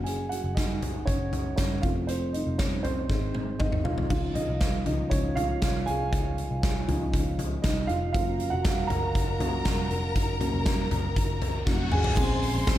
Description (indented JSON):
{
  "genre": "piano-driven pop",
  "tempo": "119 BPM",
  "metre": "4/4",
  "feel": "straight",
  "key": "unclear",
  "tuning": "A4 = 440 Hz",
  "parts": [
    { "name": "dark upright piano", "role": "accompaniment", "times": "0.0-12.8 s", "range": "Db3 to Bb5", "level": "-30 LUFS", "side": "right 1 dB", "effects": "slapback echo" },
    { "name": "vintage muted picked electric bass", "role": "bass", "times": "0.0-12.8 s", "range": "F1 to Db2", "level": "-31 LUFS", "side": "equal", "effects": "none" },
    { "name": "huge arena drum kit", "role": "drums", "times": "0.1-12.8 s", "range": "crash cymbal, hi-hat, kick drum, snare drum, toms", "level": "-28 LUFS", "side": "equal", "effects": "none" },
    { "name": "warm studio violin section", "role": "second line", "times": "8.1-12.8 s", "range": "Gb4 to C6", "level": "-34 LUFS", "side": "left 2 dB", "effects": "slapback echo" },
    { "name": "reverse cymbal", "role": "sound effects", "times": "11.5-12.2 s", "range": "none", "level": "-38 LUFS", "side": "left 4 dB", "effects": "none" }
  ],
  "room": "moderate recital hall reverb, RT60 1.4 s",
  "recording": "big arena sound",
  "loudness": "-25 LUFS",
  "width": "side -13 dB against mid",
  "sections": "0.0-4.1 A section; 4.1-12.2 B section",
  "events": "upright piano solo 0.0-4.1, 4.1-12.2; drum fill 3.1-4.1, 11.7-12.2; reverse cymbal 11.5-12.2",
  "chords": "0.0 Gb; 1.8 F; 3.1 Ab; 4.1 Dbadd9; 8.1 Gb; 12.2 Bbm7"
}